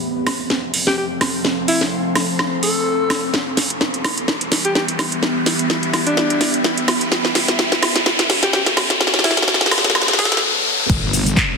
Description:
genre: bass house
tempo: 127 BPM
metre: 4/4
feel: swing 55% on 16ths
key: E phrygian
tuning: A4 = 441 Hz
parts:
  - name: deep dark ambient pad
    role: sustained chords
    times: 0.0-11.6 s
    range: E3 to A4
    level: -28 LUFS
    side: left 2 dB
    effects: chorus, built-in reverb, sidechain pumping
  - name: riser and impact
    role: sound effects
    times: 0.0-11.6 s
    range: none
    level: -22 LUFS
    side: left 2 dB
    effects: none
  - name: ethereal airy pad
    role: texture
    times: 0.0-11.6 s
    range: B3 to C6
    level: -25 LUFS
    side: right 1 dB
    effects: ensemble chorus, built-in reverb, phaser, sidechain pumping
  - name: house drum kit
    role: drums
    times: 0.3-11.5 s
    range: crash cymbal, handclaps, hi-hat, shaker, snare drum, woodblock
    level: -18 LUFS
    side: equal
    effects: none
  - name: mellow alto saxophone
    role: melody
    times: 0.9-10.4 s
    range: D4 to A4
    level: -23 LUFS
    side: left 1 dB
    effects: dub echo
  - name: wobble bass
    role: bass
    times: 10.9-11.4 s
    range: E1 to G1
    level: -20 LUFS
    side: equal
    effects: chorus, overdrive, sidechain pumping
  - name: electronic kick drum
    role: drums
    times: 10.9-11.5 s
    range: none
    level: -18 LUFS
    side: equal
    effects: none
room: moderate lush hall reverb, RT60 1.9 s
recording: dense, heavily limited modern master, high-pass filter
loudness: -15 LUFS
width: side -4 dB against mid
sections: 0.0-10.9 A section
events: build-up 0.0-10.9; drum fill 0.0-10.4; riser 0.0-10.9; filter sweep on ambient pad 0.0-10.9; filter sweep 0.0-10.9; break 10.4-10.9; impact 10.9-11.6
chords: 0.0 F; 3.3 Em; 7.1 Aadd9; 10.9 Em

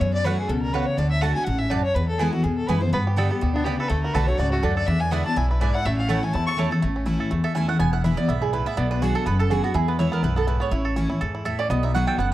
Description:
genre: bluegrass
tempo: 246 BPM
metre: 4/4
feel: swing 55% on 8ths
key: A major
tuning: A4 = 441 Hz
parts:
  - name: warm fiddle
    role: melody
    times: 0.0-6.5 s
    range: D4 to C#6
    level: -27 LUFS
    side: left 1 dB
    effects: plate reverb, analog delay
  - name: picked steel-string acoustic guitar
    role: accompaniment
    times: 0.0-12.3 s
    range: E2 to G4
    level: -24 LUFS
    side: left 2 dB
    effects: plate reverb
  - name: upright bass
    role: bass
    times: 0.0-12.3 s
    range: E1 to G2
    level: -25 LUFS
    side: equal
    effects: none
  - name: mandolin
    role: stabs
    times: 0.3-12.3 s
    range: A3 to A5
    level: -29 LUFS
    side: right 6 dB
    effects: plate reverb, analog delay
  - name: bluegrass banjo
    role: melody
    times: 2.9-12.3 s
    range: A3 to A4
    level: -31 LUFS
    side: right 3 dB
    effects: plate reverb
room: moderate studio reverb, RT60 0.6 s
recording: dark, warm production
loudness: -20 LUFS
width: side -14 dB against mid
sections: 0.0-6.8 A section; 6.8-12.3 B section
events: mandolin solo 6.8-12.3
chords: 0.0 F#m; 1.0 D; 2.0 E; 2.9 G; 3.9 D; 4.9 E7; 5.9 A; 7.8 E; 8.8 Bm; 9.8 E; 10.7 A; 11.7 B

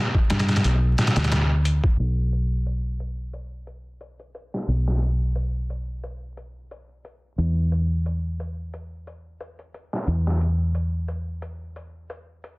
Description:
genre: trip hop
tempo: 89 BPM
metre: 4/4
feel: swing 55% on 16ths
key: unclear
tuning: A4 = 440 Hz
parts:
  - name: trip hop sampler-style drum kit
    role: drums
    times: 0.1-12.6 s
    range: hi-hat, kick drum, snare drum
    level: -24 LUFS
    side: equal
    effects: high-pass filter on hats, small room ambience, high-pass filter on kick, high-pass filter on snare
  - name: fingered electric bass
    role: bass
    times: 0.3-12.6 s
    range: B1 to G2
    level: -23 LUFS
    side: equal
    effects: none
room: little or no reverb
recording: dense, heavily limited modern master, vinyl crackle, low-pass filter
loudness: -21 LUFS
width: side -26 dB against mid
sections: 0.0-2.0 A section; 2.0-12.6 B section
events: filter sweep 2.0-12.6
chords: none

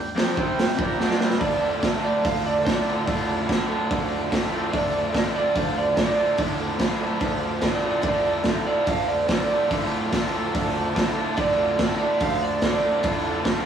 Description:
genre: garage rock duo or trio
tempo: 145 BPM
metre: 4/4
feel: straight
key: D minor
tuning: A4 = 440 Hz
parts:
  - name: overdriven combo organ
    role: sustained chords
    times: 0.0-13.6 s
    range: G4 to G5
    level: -33 LUFS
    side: right 1 dB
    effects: spring reverb
  - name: raw garage guitar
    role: riff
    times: 0.2-13.7 s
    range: D2 to F4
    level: -25 LUFS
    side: equal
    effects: overdrive
  - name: raw garage drum kit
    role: drums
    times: 0.2-13.5 s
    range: hi-hat, kick drum, snare drum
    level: -25 LUFS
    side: right 1 dB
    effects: none
  - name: electric slide guitar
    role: melody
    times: 1.4-13.0 s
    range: F4 to F5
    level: -24 LUFS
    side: right 2 dB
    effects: none
room: moderate studio reverb, RT60 0.6 s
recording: rough rehearsal-room recording, warm saturation, studio ambience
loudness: -20 LUFS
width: side -8 dB against mid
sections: 0.0-1.4 A section; 1.4-13.7 B section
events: drum fill 1.0-1.4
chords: 0.4 C5; 0.8 G5; 1.4 Dm

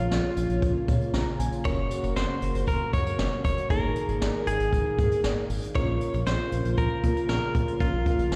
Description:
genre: synth-pop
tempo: 117 BPM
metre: 4/4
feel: straight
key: Bb minor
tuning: A4 = 440 Hz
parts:
  - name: direct-recorded clean electric guitar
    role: melody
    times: 0.0-8.4 s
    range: F4 to Db5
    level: -33 LUFS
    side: equal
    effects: delay
  - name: FM electric piano with soft pad layer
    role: accompaniment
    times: 0.0-8.4 s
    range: Bb3 to Bb5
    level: -36 LUFS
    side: equal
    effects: chorus
  - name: chorused pulse-width pad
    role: sustained chords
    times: 0.0-8.4 s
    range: Db3 to Ab4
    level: -36 LUFS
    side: equal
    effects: none
  - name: smooth synth bass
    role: bass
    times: 0.0-8.4 s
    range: Gb1 to Bb2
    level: -31 LUFS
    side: equal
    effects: none
  - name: jazz brush drum kit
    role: drums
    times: 0.1-8.4 s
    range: hi-hat, kick drum, snare drum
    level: -32 LUFS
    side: equal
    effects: none
room: moderate lush hall reverb, RT60 2.2 s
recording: played on a big sound system in a bare room, stone room reverb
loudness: -26 LUFS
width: mono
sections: 0.0-8.4 A section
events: FM electric piano fill 0.9-1.7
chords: 0.0 Bbm; 1.7 Gb; 3.7 Absus2; 5.8 Bbm

